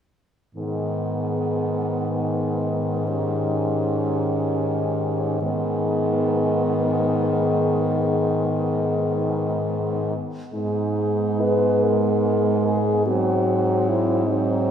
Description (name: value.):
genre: classical, lyrical piece for horn quartet.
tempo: 40-52 BPM (dotted quarters).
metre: 6/8.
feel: rubato.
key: G# minor.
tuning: A4 = 444 Hz.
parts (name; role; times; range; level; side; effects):
mellow French horn; melody; 0.6-14.7 s; D#4 to B4; -26 LUFS; left 4 dB; none.
mellow French horn; second line; 0.6-14.7 s; B3 to C#4; -27 LUFS; right 6 dB; none.
warm French horn; accompaniment; 0.6-14.7 s; D#3 to G#3; -24 LUFS; equal; none.
clear French horn; bass; 0.6-14.7 s; G#2; -26 LUFS; equal; none.
room: wet scoring stage reverb, RT60 2.1 s.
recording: heard from further back in the room.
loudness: -20 LUFS.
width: side -8 dB against mid.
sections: 0.6-10.5 A section; 10.5-14.7 B section.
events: none.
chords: 0.6 G#m; 13.1 G#7.